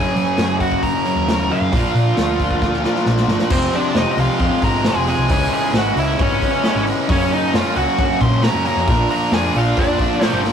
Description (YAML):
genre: quiet-loud alternative rock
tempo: 134 BPM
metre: 4/4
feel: straight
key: unclear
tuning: A4 = 439 Hz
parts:
  - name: nasal lead guitar with a parked wah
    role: melody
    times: 0.0-10.4 s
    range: C4 to C6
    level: -21 LUFS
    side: right 1 dB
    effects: overdrive
  - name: fuzz guitar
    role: riff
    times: 0.0-10.5 s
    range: F2 to D4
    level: -22 LUFS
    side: left 6 dB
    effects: distortion
  - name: fuzz guitar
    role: riff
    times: 0.0-10.5 s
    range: F2 to D4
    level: -22 LUFS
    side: right 5 dB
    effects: distortion
  - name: hollow-body short-scale picked electric bass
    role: bass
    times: 0.2-10.5 s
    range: F1 to Gb3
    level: -22 LUFS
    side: equal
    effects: none
  - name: raw garage drum kit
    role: drums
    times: 0.2-10.5 s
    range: crash cymbal, hi-hat, kick drum, snare drum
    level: -22 LUFS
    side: equal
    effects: none
room: moderate small room reverb, RT60 0.5 s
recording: rough rehearsal-room recording, warm saturation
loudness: -15 LUFS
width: side -8 dB against mid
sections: 0.0-3.5 A section; 3.5-10.5 B section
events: drum fill 2.6-3.5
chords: 0.0 Gb; 1.7 Bb; 3.5 Fm; 5.3 Dbm; 7.1 Gb; 8.9 Bb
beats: 0.38 0.83 1.28 | 1.72 2.17 2.62 3.06 | 3.51 3.96 4.41 4.85 | 5.30 5.75 6.20 6.65 | 7.09 7.54 7.99 8.44 | 8.89 9.33 9.78 10.23